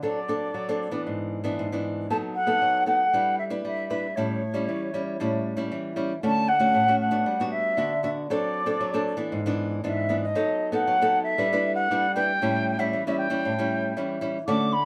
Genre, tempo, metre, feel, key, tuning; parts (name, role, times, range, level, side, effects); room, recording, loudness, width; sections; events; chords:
samba; 116 BPM; 4/4; straight; D major; A4 = 440 Hz
baroque flute; melody; 0.0-14.8 s; C#5 to D6; -27 LUFS; equal
nylon-string guitar; accompaniment; 0.0-14.8 s; G#2 to B4; -29 LUFS; equal
moderate studio ambience, RT60 0.5 s; band playing live in one room; -26 LUFS; mono
0.0-6.2 A section; 6.2-14.8 B section
0.0 D7/F#; 1.1 E7/G#; 2.1 B7/F#; 3.1 Em7/G; 4.2 A7; 6.2 Dmaj7; 7.3 Gmaj7; 8.3 D7/F#; 9.3 E7/G#; 10.4 B7/F#; 11.4 Em7/G; 12.4 A7